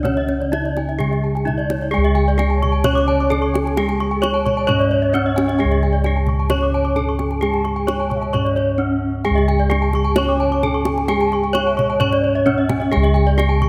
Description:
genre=Balinese gamelan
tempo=131 BPM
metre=4/4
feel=straight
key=C# pelog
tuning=A4 = 441 Hz
part: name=gamelan-type bronze metallophone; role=melody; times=0.0-13.7 s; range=C#4 to C#5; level=-23 LUFS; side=equal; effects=none
part: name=gamelan-type bronze metallophone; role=accompaniment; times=0.0-13.7 s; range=C#3 to C#4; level=-27 LUFS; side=equal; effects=none
part: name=gamelan-type bronze metallophone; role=arpeggios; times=0.0-13.7 s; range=C#5 to D6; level=-28 LUFS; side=equal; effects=none
part: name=gamelan-type bossed gongs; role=bass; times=0.0-13.7 s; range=C#2 to G#4-45c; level=-22 LUFS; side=equal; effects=none
part: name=kendang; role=percussion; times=0.1-13.7 s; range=none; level=-29 LUFS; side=equal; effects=none
part: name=gamelan-type bronze metallophone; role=arpeggios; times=0.2-13.6 s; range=C#5 to D6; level=-29 LUFS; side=equal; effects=none
part: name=breathy mellow bansuri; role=second line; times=2.5-13.0 s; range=G4+45c to A5-30c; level=-32 LUFS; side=equal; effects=none
room=moderate concert hall reverb, RT60 2.3 s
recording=none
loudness=-18 LUFS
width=mono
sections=0.0-1.9 A section; 1.9-13.7 B section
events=drum fill 8.7-9.3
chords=none

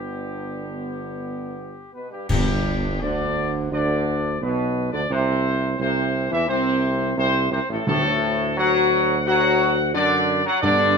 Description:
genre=classical, ceremonial fanfare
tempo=86 BPM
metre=4/4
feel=uneven beats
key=G major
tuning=A4 = 444 Hz
part: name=mellow trumpet section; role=melody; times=0.0-11.0 s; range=G4 to F#5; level=-24 LUFS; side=left 1 dB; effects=none
part: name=clear trombone section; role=sustained chords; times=0.0-11.0 s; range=G2 to B3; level=-26 LUFS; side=right 2 dB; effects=none
part: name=mellow French horn section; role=sustained chords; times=0.0-11.0 s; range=G3 to F#4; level=-26 LUFS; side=left 5 dB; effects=none
part: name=warm tuba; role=bass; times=0.0-11.0 s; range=G1 to G2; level=-26 LUFS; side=right 4 dB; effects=none
part: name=clash cymbals and concert bass drum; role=percussion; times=2.3-3.7 s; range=none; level=-30 LUFS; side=equal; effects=none
part: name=timpani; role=percussion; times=2.3-3.3, 7.9-11.0 s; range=G2 to D3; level=-28 LUFS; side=left 2 dB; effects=none
room=moderate large studio reverb, RT60 0.8 s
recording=minimal, uncompressed stereo recording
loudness=-19 LUFS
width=side -5 dB against mid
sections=0.0-2.3 A section; 2.3-11.0 B section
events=band accent 2.3-3.0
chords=0.0 G; 5.1 C; 7.9 D

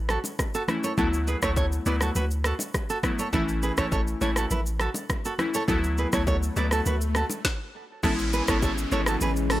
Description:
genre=afrobeats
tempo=102 BPM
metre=4/4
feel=straight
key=A major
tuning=A4 = 440 Hz
part: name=punchy sub bass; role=bass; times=0.0-9.6 s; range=G#1 to D2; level=-27 LUFS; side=equal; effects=none
part: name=nylon-string guitar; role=riff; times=0.1-9.6 s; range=E4 to D5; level=-30 LUFS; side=right 3 dB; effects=analog delay
part: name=afro-pop drum kit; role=drums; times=0.1-9.6 s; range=hi-hat, kick drum, rim click, shaker, snare drum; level=-29 LUFS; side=equal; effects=none
part: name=bongos and congas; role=percussion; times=0.2-9.4 s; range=none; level=-36 LUFS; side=left 1 dB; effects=none
part: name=glassy digital keys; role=accompaniment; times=0.7-9.2 s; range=E3 to E4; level=-29 LUFS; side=left 2 dB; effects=chorus
part: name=swell and downlifter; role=sound effects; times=6.4-9.6 s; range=none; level=-37 LUFS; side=left 2 dB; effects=none
part: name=deep dark ambient pad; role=sustained chords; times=8.7-9.6 s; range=E3 to C#4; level=-31 LUFS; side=left 2 dB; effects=chorus, built-in reverb
room=digital ambience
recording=dry, gritty hardware recording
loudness=-23 LUFS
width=side -15 dB against mid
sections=0.0-8.0 A section; 8.0-9.6 B section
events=swell 6.4-8.0; stop 7.4-8.0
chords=0.0 A; 1.0 D6; 3.3 A; 5.7 D6; 8.0 Amaj7

